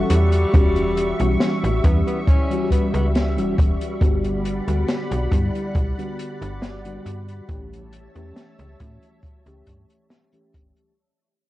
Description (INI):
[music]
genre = vaporwave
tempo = 69 BPM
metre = 4/4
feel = straight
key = unclear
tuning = A4 = 440 Hz
[part]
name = mellow FM electric piano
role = accompaniment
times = 0.0-10.9 s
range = D3 to G4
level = -26 LUFS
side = left 1 dB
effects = ensemble chorus, cassette tape, tape echo
[part]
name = soft string machine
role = sustained chords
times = 0.0-10.9 s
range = G3 to C#6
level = -29 LUFS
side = equal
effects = ensemble chorus, vintage 12-bit sampler grit, cassette tape
[part]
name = slap-like FM bass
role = bass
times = 0.0-10.7 s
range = E1 to A2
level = -22 LUFS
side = equal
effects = tube saturation
[part]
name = breathy tenor saxophone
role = melody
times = 0.1-3.1 s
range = G3 to C#4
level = -27 LUFS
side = equal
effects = vintage 12-bit sampler grit, cassette tape, tape echo
[part]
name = open jazz drum kit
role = drums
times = 0.1-10.9 s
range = hi-hat, snare drum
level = -28 LUFS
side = left 1 dB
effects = cassette tape
[part]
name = kick drum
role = drums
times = 0.5-10.7 s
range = none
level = -18 LUFS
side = equal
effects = cassette tape
[sound]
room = light reverb, studio reverb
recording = home recording on cassette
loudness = -18 LUFS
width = side -16 dB against mid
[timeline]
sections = 0.0-11.0 A section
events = fade-out 0.0-11.0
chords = 0.1 Em69; 4.0 Gmaj7; 7.5 A7